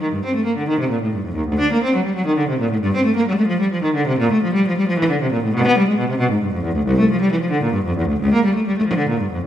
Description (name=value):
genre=classical, baroque-style suite movement for unaccompanied cello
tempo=89 BPM (dotted quarters)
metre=12/8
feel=rubato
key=unclear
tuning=A4 = 440 Hz
part: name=clear cello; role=solo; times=0.0-9.5 s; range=C2 to D4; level=-16 LUFS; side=equal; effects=none
room=moderate recital hall reverb, RT60 1.5 s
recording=minimal, uncompressed stereo recording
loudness=-16 LUFS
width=side -11 dB against mid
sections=0.0-9.5 A section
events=none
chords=none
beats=0.12 0.80 | 1.48 2.15 2.82 3.49 | 4.18 4.87 5.53 6.19 | 6.86 7.51 8.19 8.86